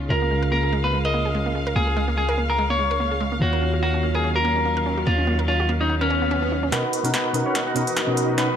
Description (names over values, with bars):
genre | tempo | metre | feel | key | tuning
future bass | 145 BPM | 4/4 | swing 56% on 16ths, half-time | B lydian | A4 = 444 Hz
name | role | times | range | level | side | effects
tine electric piano | accompaniment | 0.0-8.5 s | B2 to C#5 | -27 LUFS | right 1 dB | medium stereo tremolo
rich studio string section | sustained chords | 0.0-8.6 s | B2 to E#5 | -31 LUFS | left 1 dB | low-pass filter
warm 808-style bass | bass | 0.0-6.7 s | C#2 to D#2 | -25 LUFS | equal | none
clean electric guitar | melody | 0.1-8.6 s | B3 to F#5 | -24 LUFS | left 1 dB | low-pass filter, ping-pong delay
wide unison pluck | arpeggios | 0.1-6.7 s | G#3 to A#4 | -29 LUFS | right 2 dB | ping-pong delay
swell and riser | sound effects | 6.0-8.6 s | none | -33 LUFS | left 1 dB | none
supersaw chords | riff | 6.7-8.6 s | D#4 to F#5 | -25 LUFS | equal | low-pass filter
big-room dance drum kit | drums | 6.7-8.5 s | hi-hat, snare drum | -26 LUFS | equal | overdrive, high-pass filter on snare, high-pass filter on hats, high-pass filter on room
room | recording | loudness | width
light reverb, digital ambience | none | -19 LUFS | side -8 dB against mid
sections
0.0-6.7 A section; 6.7-8.6 B section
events
swell 6.0-6.7; build-up 6.7-8.6; drum fill 6.7-8.6; filter sweep on supersaw synth 6.7-8.6; filter sweep on clean electric guitar 6.7-8.6; filter sweep 6.7-8.6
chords
0.1 A#m7/C#; 3.4 D#m9; 6.7 Bmaj7